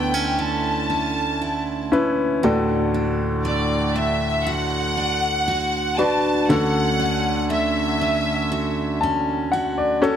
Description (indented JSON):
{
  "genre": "pop",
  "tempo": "59 BPM",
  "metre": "4/4",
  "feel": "straight",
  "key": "D major",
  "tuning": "A4 = 442 Hz",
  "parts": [
    { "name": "bright studio violin section", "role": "melody", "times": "0.0-9.0 s", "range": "D5 to A5", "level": "-23 LUFS", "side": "equal", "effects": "none" },
    { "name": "clear grand piano", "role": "accompaniment", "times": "0.0-10.2 s", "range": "D2 to A5", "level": "-22 LUFS", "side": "left 2 dB", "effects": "none" },
    { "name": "picked steel-string acoustic guitar", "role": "arpeggios", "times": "0.0-10.2 s", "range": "D3 to F#4", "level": "-26 LUFS", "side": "right 4 dB", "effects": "none" }
  ],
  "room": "moderate plate reverb, RT60 2.6 s",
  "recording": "none",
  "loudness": "-19 LUFS",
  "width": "side -9 dB against mid",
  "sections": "0.0-10.2 A section",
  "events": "grand piano fill 8.5-10.2",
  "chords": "0.0 A/D; 2.4 D; 6.5 F#m/D"
}